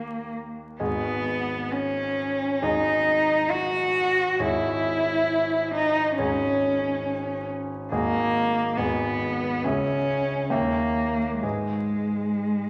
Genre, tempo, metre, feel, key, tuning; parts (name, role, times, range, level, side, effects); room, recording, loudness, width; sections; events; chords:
classical, romantic duo for cello and grand piano; 68 BPM; 4/4; uneven beats, rubato; G# minor; A4 = 439 Hz
rich cello; melody; 0.0-12.7 s; G#3 to F#4; -26 LUFS; equal
clear grand piano; accompaniment; 0.0-12.7 s; G#1 to G#5; -32 LUFS; equal
wet scoring stage reverb, RT60 1.7 s; vinyl crackle; -25 LUFS; mono
0.0-12.7 A section
0.0 D#; 0.8 G#m; 4.4 C#m/G#; 7.9 G#m; 9.6 C#m; 10.5 D#7b9; 11.4 G#m